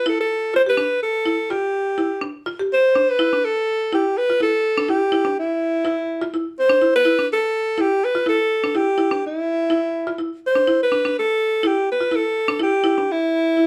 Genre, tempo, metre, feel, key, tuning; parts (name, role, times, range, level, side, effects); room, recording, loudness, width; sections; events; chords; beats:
afrobeat; 124 BPM; 4/4; swing 54% on 16ths; A4 = 440 Hz
breathy alto saxophone; melody; 0.0-13.7 s; E4 to C5; -20 LUFS; equal
marimba with hard mallets; arpeggios; 0.1-13.7 s; D4 to G4; -26 LUFS; equal
moderate studio reverb, RT60 0.5 s; band playing live in one room; -20 LUFS; mono
0.0-2.7 A section; 2.7-13.7 B section
0.0 Dmadd9; 2.7 Dsus2
0.31 | 0.79 1.27 1.75 2.23 | 2.71 3.19 3.67 4.16 | 4.64 5.12 5.60 6.08 | 6.56 7.05 7.53 8.01 | 8.49 8.97 9.46 9.94 | 10.42 10.91 11.39 11.87 | 12.35 12.84 13.32